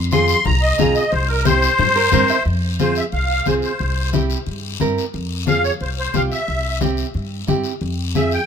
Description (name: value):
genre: latin, cumbia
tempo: 179 BPM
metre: 4/4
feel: straight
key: F harmonic minor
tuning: A4 = 440 Hz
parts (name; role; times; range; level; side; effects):
- upright bass; bass; 0.0-8.4 s; C2 to G2; -22 LUFS; equal; none
- musette accordion; melody; 0.1-8.5 s; Bb4 to C6; -19 LUFS; left 1 dB; none
- nylon-string guitar; accompaniment; 0.1-8.4 s; C4 to E5; -23 LUFS; right 4 dB; none
- congas; percussion; 0.1-8.3 s; none; -23 LUFS; left 10 dB; none
- guiro; percussion; 0.1-8.5 s; none; -29 LUFS; left 8 dB; none
room: light reverb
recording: minimal, uncompressed stereo recording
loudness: -16 LUFS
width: side -7 dB against mid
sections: 0.0-2.5 A section; 2.5-8.5 B section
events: accordion solo 0.0-2.5; nylon-string guitar fill 1.8-2.5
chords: 0.0 Fm; 1.1 C7; 2.5 Fm; 3.8 C7; 5.1 Fm; 6.5 C; 7.8 Fm